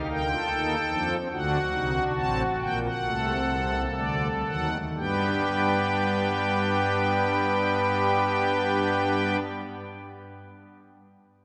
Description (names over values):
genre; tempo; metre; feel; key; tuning
classical, baroque-style 4-part fugue for pipe organ; 58-77 BPM; 4/4; straight; unclear; A4 = 440 Hz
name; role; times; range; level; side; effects
pipe organ, strings celeste; solo; 0.0-9.4 s; A1 to A5; -26 LUFS; equal; none
room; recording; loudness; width
wet church reverb, RT60 3.6 s; none; -26 LUFS; mono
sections
0.0-5.0 A section; 5.0-9.1 B section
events
slowing down 0.0-5.0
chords
0.0 Am7b5; 1.3 D7; 5.0 G